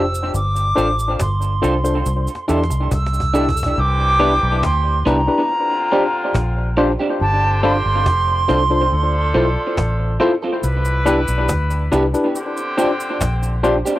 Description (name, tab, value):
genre	lovers rock reggae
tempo	70 BPM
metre	4/4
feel	straight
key	C major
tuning	A4 = 440 Hz
part	silver concert flute	melody	0.0-10.2 s	A5 to E6	-20 LUFS	right 2 dB	tape echo
part	tine electric piano	accompaniment	0.0-13.9 s	D4 to C5	-21 LUFS	left 2 dB	medium stereo tremolo, tape echo, plate reverb
part	vintage muted fingered electric bass	bass	0.0-13.8 s	F1 to E2	-19 LUFS	equal	none
part	cajon	drums	0.1-14.0 s	none	-24 LUFS	equal	cassette tape
part	cabasa	percussion	0.1-3.8, 10.6-14.0 s	none	-34 LUFS	right 3 dB	none
part	electric guitar through a small old amp	stabs	0.8-13.9 s	B3 to A4	-24 LUFS	right 2 dB	tape echo, plate reverb
part	bright saxophone section	second line	3.8-13.6 s	D3 to B4	-24 LUFS	left 1 dB	tape echo
room	light reverb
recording	home recording on cassette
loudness	-15 LUFS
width	side -15 dB against mid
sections	0.0-3.8 A section; 3.8-14.0 B section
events	drum fill 2.1-3.8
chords	0.3 G9sus4; 2.1 C69; 3.8 Cmaj7; 5.5 Bb69; 7.2 G9sus4; 8.9 Dm7; 10.6 Cmaj7; 12.3 Bb69